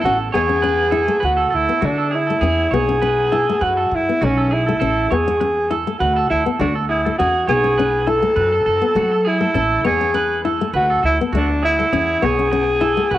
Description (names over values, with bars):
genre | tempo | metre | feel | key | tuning
highlife | 101 BPM | 4/4 | swing 54% on 16ths | A major | A4 = 438 Hz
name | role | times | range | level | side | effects
growling alto saxophone | melody | 0.0-13.2 s | C#4 to A4 | -17 LUFS | equal | cassette tape
nylon-string guitar | accompaniment | 0.0-13.2 s | A3 to E4 | -24 LUFS | left 5 dB | cassette tape
electric guitar at the edge of break-up | arpeggios | 0.0-13.2 s | F#4 to C#5 | -24 LUFS | right 6 dB | lush chorus, cassette tape, tape echo
upright bass | bass | 0.0-13.2 s | A1 to F#3 | -24 LUFS | equal | none
room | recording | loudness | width
light reverb, small room ambience | home recording on cassette | -15 LUFS | side -13 dB against mid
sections
0.0-13.2 A section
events
none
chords
0.0 A; 1.2 D; 2.4 E; 3.6 F#m; 4.8 A; 6.0 D; 7.2 E; 8.4 F#m; 9.6 A; 10.8 D; 11.9 E